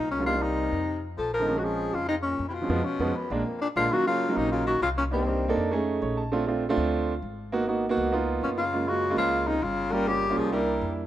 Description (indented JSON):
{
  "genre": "jazz",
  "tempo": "199 BPM",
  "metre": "4/4",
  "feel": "straight",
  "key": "Bb minor",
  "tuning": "A4 = 440 Hz",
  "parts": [
    { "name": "breathy tenor saxophone", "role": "melody", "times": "0.0-5.7, 8.4-10.9 s", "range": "Bb3 to Bb4", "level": "-27 LUFS", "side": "left 2 dB", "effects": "none" },
    { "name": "warm baritone saxophone", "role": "second line", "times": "0.0-5.7, 8.4-10.9 s", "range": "F2 to G3", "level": "-36 LUFS", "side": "left 5 dB", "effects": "none" },
    { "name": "upright bass", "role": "bass", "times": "0.0-11.1 s", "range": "G1 to Gb2", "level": "-33 LUFS", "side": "left 1 dB", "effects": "none" },
    { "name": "warm baby grand piano", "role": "accompaniment", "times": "0.2-11.0 s", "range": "F3 to A5", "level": "-27 LUFS", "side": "right 3 dB", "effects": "none" }
  ],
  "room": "light reverb, studio reverb",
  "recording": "rough home demo mix",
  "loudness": "-24 LUFS",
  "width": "side -12 dB against mid",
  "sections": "0.0-3.9 A section; 3.9-11.1 B section",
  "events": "band accent 2.7-3.9; grand piano fill 5.9-6.3",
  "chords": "0.3 Cm7; 0.9 F7; 1.5 Bbm9; 2.7 Fdim; 3.3 Bb7; 3.9 Ebm9; 5.1 Cm7; 5.7 F7alt; 6.3 Bbmaj7; 7.5 Abm7; 8.1 Db13; 8.7 Gbmaj9; 9.9 Gm7b5; 10.5 C7",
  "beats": "| 0.27 0.57 0.88 1.18 | 1.48 1.79 2.09 2.39 | 2.70 3.00 3.30 3.61 | 3.91 4.21 4.51 4.82 | 5.12 5.42 5.72 6.02 | 6.32 6.62 6.92 7.22 | 7.53 7.83 8.12 8.42 | 8.72 9.02 9.32 9.62 | 9.92 10.22 10.52 10.82"
}